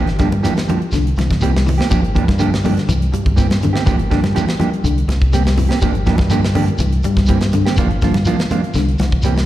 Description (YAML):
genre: afrobeat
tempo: 123 BPM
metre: 4/4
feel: straight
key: G dorian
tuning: A4 = 440 Hz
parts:
  - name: electric guitar at the edge of break-up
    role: arpeggios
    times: 0.0-9.4 s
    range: D3 to G3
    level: -22 LUFS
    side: left 6 dB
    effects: slapback echo
  - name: mellow electric guitar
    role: stabs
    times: 0.0-9.4 s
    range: E3 to G4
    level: -20 LUFS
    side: right 5 dB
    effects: slapback echo
  - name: deep dub fingered electric bass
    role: bass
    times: 0.0-9.5 s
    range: G1 to G2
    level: -17 LUFS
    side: equal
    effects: none
  - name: tight funk drum kit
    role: drums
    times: 0.1-9.5 s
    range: hi-hat, kick drum, snare drum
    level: -20 LUFS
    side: equal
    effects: none
  - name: shekere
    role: percussion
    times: 0.2-9.4 s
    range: none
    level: -24 LUFS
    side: left 1 dB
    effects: none
  - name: congas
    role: percussion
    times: 0.3-9.5 s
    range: none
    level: -22 LUFS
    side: equal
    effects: slapback echo
room: studio ambience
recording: live gig heard through the venue's PA, recital hall reverb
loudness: -13 LUFS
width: side -14 dB against mid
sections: 0.0-9.5 A section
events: none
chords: 0.0 Gm7; 0.9 C7; 1.9 Gm7; 2.9 C7; 3.9 Gm7; 4.8 C7; 5.8 Gm7; 6.8 C7; 7.8 Gm7; 8.8 C7